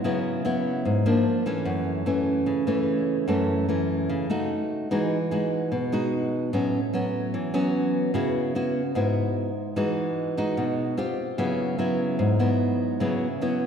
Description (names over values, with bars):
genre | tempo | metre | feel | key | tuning
bossa nova | 148 BPM | 4/4 | straight | C# minor | A4 = 440 Hz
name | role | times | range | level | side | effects
nylon-string guitar | solo | 0.0-13.7 s | F#2 to G4 | -23 LUFS | equal | none
room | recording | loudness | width
wet scoring stage reverb, RT60 2.0 s | recorded in a church or concert hall | -23 LUFS | side -7 dB against mid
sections
0.0-13.7 A section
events
none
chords
0.0 C#m7; 1.3 A#maj7#11; 1.7 F#m7; 4.5 D#dim/A; 4.9 Emaj9; 6.5 A69; 8.1 C#m7; 9.8 Emaj9; 11.0 Csus4; 11.4 C#m7